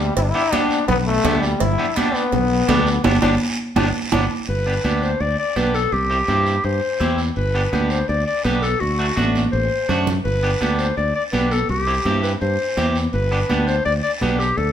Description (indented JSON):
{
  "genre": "latin, cumbia",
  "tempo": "166 BPM",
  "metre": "4/4",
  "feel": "straight",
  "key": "G major",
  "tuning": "A4 = 440 Hz",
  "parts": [
    { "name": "growling trombone", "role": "second line", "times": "0.0-4.2 s", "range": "G3 to E4", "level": "-21 LUFS", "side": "left 4 dB", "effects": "none" },
    { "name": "modern bright fingered electric bass", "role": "bass", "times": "0.0-14.7 s", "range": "G1 to G2", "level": "-22 LUFS", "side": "equal", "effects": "none" },
    { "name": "congas", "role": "percussion", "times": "0.2-14.7 s", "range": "none", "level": "-24 LUFS", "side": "right 2 dB", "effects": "none" },
    { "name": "cowbell and timbales", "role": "percussion", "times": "0.2-4.2 s", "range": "none", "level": "-26 LUFS", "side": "right 5 dB", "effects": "none" },
    { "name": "guiro", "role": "percussion", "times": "0.2-14.7 s", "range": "none", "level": "-32 LUFS", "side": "right 3 dB", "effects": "none" },
    { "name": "electric guitar at the edge of break-up", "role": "accompaniment", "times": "0.3-14.4 s", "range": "A3 to G4", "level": "-25 LUFS", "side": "right 1 dB", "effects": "none" },
    { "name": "clear clarinet", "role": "melody", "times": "4.5-14.7 s", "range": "F#4 to D5", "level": "-22 LUFS", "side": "left 2 dB", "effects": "none" }
  ],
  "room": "wet studio reverb, RT60 0.9 s",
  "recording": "heard from further back in the room",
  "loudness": "-17 LUFS",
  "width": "side -9 dB against mid",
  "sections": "0.0-4.5 A section; 4.5-14.7 B section",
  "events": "trombone solo 0.0-4.5; band accent 3.0-4.5; drum fill 9.2-10.3",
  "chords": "0.0 G; 5.9 C; 7.4 G; 8.8 D7; 10.3 G; 11.7 C; 13.1 G"
}